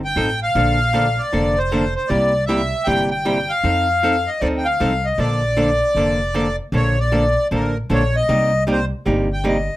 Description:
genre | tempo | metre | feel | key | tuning
country, western swing | 155 BPM | 4/4 | swing 66% on 8ths | Bb major | A4 = 441 Hz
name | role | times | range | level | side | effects
accordion | melody | 0.0-9.8 s | Bb4 to G5 | -19 LUFS | left 1 dB | none
upright bass | bass | 0.0-9.7 s | F1 to F2 | -22 LUFS | equal | none
archtop guitar, miked and amplified | accompaniment | 0.2-9.6 s | C3 to A4 | -21 LUFS | right 1 dB | none
room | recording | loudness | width
moderate club reverb, RT60 0.5 s | none | -16 LUFS | side -16 dB against mid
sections
0.0-6.7 A section; 6.7-9.8 B section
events
accordion solo 6.7-9.8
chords
0.0 F7; 0.6 Bbmaj7; 2.1 C7; 3.6 F7; 5.2 Bbmaj7; 8.3 Cm7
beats
0.16 | 0.55 0.94 1.32 1.71 | 2.10 2.48 2.87 3.26 | 3.64 4.03 4.42 4.80 | 5.19 5.58 5.96 6.35 | 6.73 7.12 7.51 7.89 | 8.28 8.67 9.05 9.44

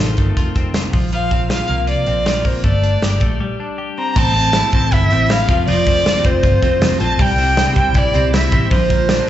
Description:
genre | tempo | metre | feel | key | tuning
jangly indie pop | 158 BPM | 4/4 | straight | F major | A4 = 440 Hz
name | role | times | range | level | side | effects
dark violin | melody | 0.0-9.3 s | A4 to Bb5 | -18 LUFS | equal | slapback echo, tape echo
twelve-string electric guitar | arpeggios | 0.0-9.3 s | Eb3 to G4 | -23 LUFS | left 4 dB | slapback echo, tape echo
vintage muted fingered electric bass | bass | 0.0-9.2 s | F1 to F2 | -18 LUFS | equal | none
modern studio drum kit | drums | 0.2-9.3 s | crash cymbal, hi-hat, kick drum, snare drum | -18 LUFS | equal | none
semi-hollow electric guitar | accompaniment | 4.2-9.3 s | A2 to F4 | -24 LUFS | right 8 dB | ensemble chorus, slapback echo
room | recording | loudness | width
studio ambience | live gig heard through the venue's PA, club reverb, nothing above 7.9 kHz | -13 LUFS | side -12 dB against mid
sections
0.0-4.2 A section; 4.2-9.3 B section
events
break 3.4-4.2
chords
0.0 F7; 0.9 Bbsus2; 2.6 Gsus2; 3.4 Csus2; 4.2 Am; 5.5 F; 7.2 C; 8.7 Bb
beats
0.36 0.74 | 1.12 1.50 1.88 2.26 | 2.64 3.02 3.40 3.78 | 4.16 4.54 4.92 5.30 | 5.68 6.06 6.43 6.82 | 7.19 7.57 7.95 8.33 | 8.71 9.10

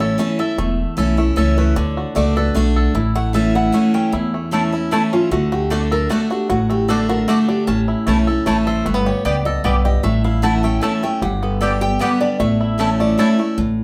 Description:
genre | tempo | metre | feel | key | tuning
bluegrass | 152 BPM | 3/4 | straight | A mixolydian | A4 = 440 Hz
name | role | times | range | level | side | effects
bluegrass banjo | melody | 0.0-13.6 s | A3 to A4 | -27 LUFS | equal | none
picked steel-string acoustic guitar | melody | 0.0-13.3 s | E4 to A5 | -26 LUFS | equal | none
picked steel-string acoustic guitar | accompaniment | 0.0-13.8 s | E2 to G4 | -21 LUFS | equal | none
upright bass | bass | 0.0-13.8 s | E1 to E2 | -23 LUFS | equal | none
mandolin | stabs | 4.5-13.3 s | A3 to A5 | -26 LUFS | equal | slapback echo
room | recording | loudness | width
wet small room reverb, RT60 0.5 s | heard from further back in the room | -18 LUFS | mono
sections
0.0-13.6 A section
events
none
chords
0.0 A; 1.8 D; 3.0 A; 5.3 D; 7.7 A; 8.9 G; 10.0 A; 11.2 G; 12.4 A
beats
0.19 | 0.58 0.98 1.37 | 1.77 2.16 2.56 | 2.95 3.35 3.74 | 4.13 4.53 4.92 | 5.32 5.71 6.10 | 6.50 6.89 7.28 | 7.68 8.07 8.46 | 8.86 9.25 9.64 | 10.04 10.43 10.82 | 11.22 11.61 12.01 | 12.40 12.79 13.19 | 13.58

